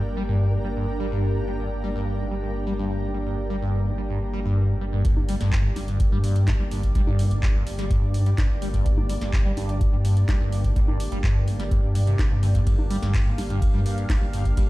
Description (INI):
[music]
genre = acid house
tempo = 126 BPM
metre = 4/4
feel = straight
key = G phrygian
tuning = A4 = 440 Hz
[part]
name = lush unison pad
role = sustained chords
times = 0.0-14.7 s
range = Bb3 to F5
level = -33 LUFS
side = equal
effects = chorus, sidechain pumping
[part]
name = liquid acid bass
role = riff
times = 0.0-14.6 s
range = F2 to G3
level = -26 LUFS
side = equal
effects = phaser, overdrive, wide subtle chorus, vintage 12-bit sampler grit
[part]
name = saturated sub bass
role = bass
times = 0.0-14.7 s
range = G1 to G2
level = -27 LUFS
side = equal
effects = tube saturation, sidechain pumping
[part]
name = granular cloud pad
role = texture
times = 0.0-5.0 s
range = D4 to Bb5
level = -36 LUFS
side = right 2 dB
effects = built-in reverb, sidechain pumping
[part]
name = booming analog drum machine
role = drums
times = 5.0-14.7 s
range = congas, handclaps, hi-hat, ride cymbal, snare drum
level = -35 LUFS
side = equal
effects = overdrive
[part]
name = electronic kick drum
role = drums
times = 5.0-14.7 s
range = none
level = -22 LUFS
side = equal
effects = overdrive
[sound]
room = light reverb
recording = played on a big sound system in a bare room, large studio reverb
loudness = -21 LUFS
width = side -18 dB against mid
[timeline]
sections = 0.0-5.0 A section; 5.0-14.7 B section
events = drop 5.0-14.7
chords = 0.0 Gm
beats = 0.29 0.76 | 1.24 1.72 2.19 2.67 | 3.14 3.62 4.10 4.57 | 5.05 5.52 6.00 6.48 | 6.95 7.43 7.91 8.38 | 8.86 9.33 9.81 10.29 | 10.76 11.24 11.71 12.19 | 12.67 13.14 13.62 14.10 | 14.57